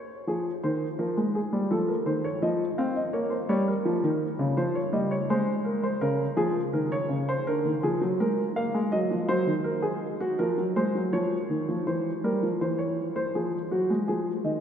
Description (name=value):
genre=classical, baroque-style two-part invention for grand piano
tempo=83 BPM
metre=4/4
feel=straight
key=Bb minor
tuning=A4 = 440 Hz
part: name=warm baby grand piano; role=solo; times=0.0-14.6 s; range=Db3 to F5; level=-25 LUFS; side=equal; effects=none
room=wet cathedral reverb, RT60 5.6 s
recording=recorded in a church or concert hall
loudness=-25 LUFS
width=side -8 dB against mid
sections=0.0-11.9 A section; 11.9-14.6 B section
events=none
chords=0.3 Fm; 1.7 F7; 3.1 Bbm; 4.6 Fm; 6.0 Bbm/Db; 7.5 Bb7/D; 8.9 Ebm; 10.4 Bbm/F; 11.9 C7/E; 13.3 Fm